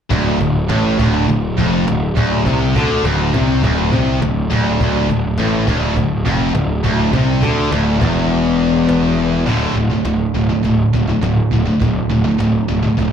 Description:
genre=heavy metal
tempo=103 BPM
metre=4/4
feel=straight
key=D minor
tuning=A4 = 440 Hz
part: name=distorted electric guitar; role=riff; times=0.1-9.5 s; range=D2 to D3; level=-20 LUFS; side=left 2 dB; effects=distortion, slapback echo
part: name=high-gain distorted guitar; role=riff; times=0.1-13.1 s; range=D2 to D3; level=-20 LUFS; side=left 8 dB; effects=distortion
part: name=high-gain distorted guitar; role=riff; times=0.1-13.1 s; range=D2 to D3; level=-20 LUFS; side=right 8 dB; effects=distortion
part: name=fuzz picked electric bass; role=bass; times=0.1-13.1 s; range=D1 to D2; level=-18 LUFS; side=equal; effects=overdrive
part: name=cajon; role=drums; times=0.1-13.1 s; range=none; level=-22 LUFS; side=equal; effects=none
room=light reverb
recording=live gig heard through the venue's PA, club reverb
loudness=-13 LUFS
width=side -8 dB against mid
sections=0.1-9.5 A section; 9.5-13.1 B section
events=break 9.2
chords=0.1 Dm; 9.5 D5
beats=| 0.11 0.70 1.28 1.87 | 2.46 3.04 3.63 4.21 | 4.79 5.38 5.96 6.55 | 7.13 7.71 8.30 8.88 | 9.46 10.05 10.63 11.22 | 11.81 12.39 12.98

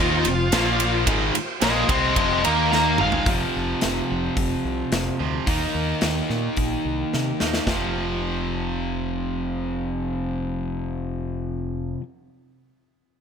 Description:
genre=hard rock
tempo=109 BPM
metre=4/4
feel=straight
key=F minor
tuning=A4 = 440 Hz
part: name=smooth overdriven lead guitar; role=melody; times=0.0-3.3 s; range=F4 to C6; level=-24 LUFS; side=equal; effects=digital delay
part: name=overdriven tonewheel organ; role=sustained chords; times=0.0-3.3 s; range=F3 to G5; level=-34 LUFS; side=left 1 dB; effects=none
part: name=cranked stack guitar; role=riff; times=0.0-12.0 s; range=F2 to Eb4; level=-28 LUFS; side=right 10 dB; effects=overdrive
part: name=cranked stack guitar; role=riff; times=0.0-3.3 s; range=F2 to Eb4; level=-28 LUFS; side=equal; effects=overdrive, lush chorus
part: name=overdriven electric guitar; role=riff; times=0.0-12.0 s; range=F2 to Eb4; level=-28 LUFS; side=left 10 dB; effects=none
part: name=growling fingered electric bass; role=bass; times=0.0-11.9 s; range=F1 to C3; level=-29 LUFS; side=equal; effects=overdrive
part: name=big rock drum kit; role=drums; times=0.2-7.8 s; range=hi-hat, kick drum, ride cymbal, snare drum, toms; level=-25 LUFS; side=equal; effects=none
room=light reverb, small room reverb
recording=bright 1980s-style digital production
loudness=-21 LUFS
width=side -7 dB against mid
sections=0.0-3.3 A section; 3.3-7.7 B section; 7.7-12.1 C section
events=lead electric guitar solo 0.0-3.3; drum fill 2.7-3.3, 7.1-7.7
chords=0.0 F5; 0.5 Bb5; 1.1 Fm; 2.5 Eb5; 3.0 Fm; 3.3 F5; 5.5 Eb5; 7.7 F5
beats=0.53 | 1.08 1.63 2.18 2.73 | 3.27 3.83 4.38 4.93 | 5.48 6.03 6.58 7.14 | 7.69 8.24 8.79 9.35 | 9.90 10.45 11.00 11.55

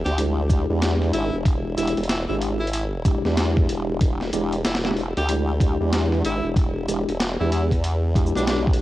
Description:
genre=glitch hop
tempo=94 BPM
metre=4/4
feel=swing 62% on 16ths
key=unclear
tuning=A4 = 440 Hz
part: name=clear tenor saxophone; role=melody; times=0.0-8.6 s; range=D4 to G4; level=-31 LUFS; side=equal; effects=vintage 12-bit sampler grit, cassette tape, tape echo
part: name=formant-sweep wobble bass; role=bass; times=0.0-8.8 s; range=E1 to E2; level=-24 LUFS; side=equal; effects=chorus
part: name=sub drop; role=sound effects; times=0.1-1.5 s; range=none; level=-42 LUFS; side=equal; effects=none
part: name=boom bap sampler-style drum kit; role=drums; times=0.1-8.8 s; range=hi-hat, shaker, snare drum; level=-28 LUFS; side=equal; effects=cassette tape
part: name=mellow tine electric piano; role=stabs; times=0.2-8.8 s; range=G#3 to G4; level=-26 LUFS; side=equal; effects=medium stereo tremolo, sidechain pumping, tape echo
part: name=electronic kick drum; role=drums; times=0.5-8.8 s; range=none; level=-20 LUFS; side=equal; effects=cassette tape
room=light reverb, digital ambience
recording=home recording on cassette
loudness=-20 LUFS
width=side -15 dB against mid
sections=0.0-8.8 A section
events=impact 0.0-1.5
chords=0.0 E7#9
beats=0.18 0.82 | 1.46 2.09 2.73 3.37 | 4.01 4.65 5.29 5.92 | 6.56 7.20 7.84 8.48

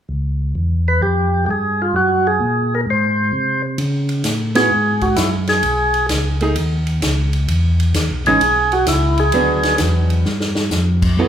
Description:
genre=soul jazz organ trio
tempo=130 BPM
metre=4/4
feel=swing 68% on 8ths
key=C# minor from 3.8 s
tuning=A4 = 445 Hz
part: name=mellow tonewheel organ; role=bass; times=0.1-11.3 s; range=G#1 to C#3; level=-18 LUFS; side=equal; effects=chorus vibrato, slow rotary speaker
part: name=percussive tonewheel organ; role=melody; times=0.9-9.8 s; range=E4 to B#4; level=-16 LUFS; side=equal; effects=slow rotary speaker
part: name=swinging big-band drum kit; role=drums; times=3.8-11.1 s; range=crash cymbal, hi-hat, kick drum, ride cymbal, snare drum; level=-23 LUFS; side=equal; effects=none
part: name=archtop guitar, miked and amplified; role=accompaniment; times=4.6-11.3 s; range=E3 to A4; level=-20 LUFS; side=right 3 dB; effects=none
room=moderate large studio reverb, RT60 1.2 s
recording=band playing live in one room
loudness=-15 LUFS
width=side -9 dB against mid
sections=0.1-3.8 A section; 3.8-11.3 B section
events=band accent 4.5; drum fill 10.3-10.7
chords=0.1 C#m; 1.0 Fmadd9; 1.9 F#add9; 2.9 G#; 3.8 C#5; 5.6 B69; 7.5 E6; 9.3 G#m7b5; 10.3 Fsus2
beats=| 0.10 0.56 1.02 1.49 | 1.95 2.41 2.87 3.33 | 3.80 4.26 4.72 5.18 | 5.64 6.11 6.57 7.03 | 7.49 7.95 8.42 8.88 | 9.34 9.80 10.26 10.72 | 11.19

